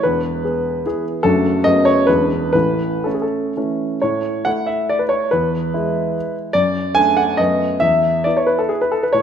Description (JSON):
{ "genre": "classical, romantic triple-time dance for piano with dotted rhythms", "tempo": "111-160 BPM", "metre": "3/4", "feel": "rubato", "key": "A major", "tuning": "A4 = 440 Hz", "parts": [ { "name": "clear grand piano", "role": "solo", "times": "0.0-9.2 s", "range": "E1 to G#5", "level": "-15 LUFS", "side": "equal", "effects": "none" } ], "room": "moderate recital hall reverb, RT60 1.5 s", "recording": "minimal, uncompressed stereo recording", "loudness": "-15 LUFS", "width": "side -8 dB against mid", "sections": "0.0-4.0 A section; 4.0-9.2 A section", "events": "none", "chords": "0.0 E; 1.2 D/F#; 1.6 B7/F#; 2.1 E7; 2.5 A; 5.3 E; 6.5 D/F#; 7.4 B7/F#; 7.8 E5", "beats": "| 0.04 0.43 0.84 | 1.23 1.64 2.08 | 2.54 3.06 3.56 | 4.03 4.46 4.90 | 5.32 5.74 6.15 | 6.55 6.96 7.39 | 7.81 8.25 8.70 | 9.13" }